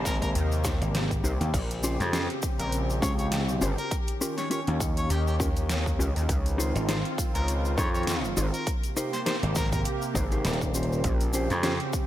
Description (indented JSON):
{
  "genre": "glitch hop",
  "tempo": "101 BPM",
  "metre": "4/4",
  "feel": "swing 56% on 16ths",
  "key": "Bb dorian",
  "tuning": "A4 = 440 Hz",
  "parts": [
    { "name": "warm analog pad", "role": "sustained chords", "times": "0.0-12.1 s", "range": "C3 to G4", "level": "-34 LUFS", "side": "right 1 dB", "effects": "chorus, vintage 12-bit sampler grit, sidechain pumping" },
    { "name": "gritty slap bass", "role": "bass", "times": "0.0-11.8 s", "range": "Eb1 to F2", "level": "-28 LUFS", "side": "equal", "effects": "overdrive" },
    { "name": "clear harmonica", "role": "melody", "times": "0.1-9.8 s", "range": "G4 to Db5", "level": "-36 LUFS", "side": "left 1 dB", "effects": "vintage 12-bit sampler grit, ping-pong delay" },
    { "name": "dubstep drum kit", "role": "drums", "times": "0.1-11.9 s", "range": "crash cymbal, hi-hat, snare drum", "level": "-35 LUFS", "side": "equal", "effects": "overdrive" },
    { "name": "electronic kick drum", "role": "drums", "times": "0.1-12.1 s", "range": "none", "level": "-30 LUFS", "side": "equal", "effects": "overdrive" },
    { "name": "tube shaker", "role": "percussion", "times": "0.1-12.1 s", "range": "none", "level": "-38 LUFS", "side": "left 2 dB", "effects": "none" },
    { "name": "gritty driven synth bass", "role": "bass", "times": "0.4-11.5 s", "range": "G1 to Eb2", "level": "-27 LUFS", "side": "equal", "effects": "overdrive" },
    { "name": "mellow electric guitar", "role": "stabs", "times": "0.6-11.7 s", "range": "Db4 to C5", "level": "-34 LUFS", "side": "left 2 dB", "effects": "sidechain pumping, ping-pong delay" }
  ],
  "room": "light reverb, digital ambience",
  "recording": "none",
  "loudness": "-25 LUFS",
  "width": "side -13 dB against mid",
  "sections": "0.0-12.1 A section",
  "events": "none",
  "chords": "0.0 Abmaj9; 1.5 Bbm69; 3.9 Eb7; 6.3 Dbmaj9; 8.7 Abmaj9; 11.0 Bbm69",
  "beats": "0.35 0.94 | 1.54 2.13 2.73 3.32 | 3.92 4.51 5.10 5.70 | 6.29 6.88 7.48 8.07 | 8.67 9.26 9.86 10.45 | 11.04 11.64"
}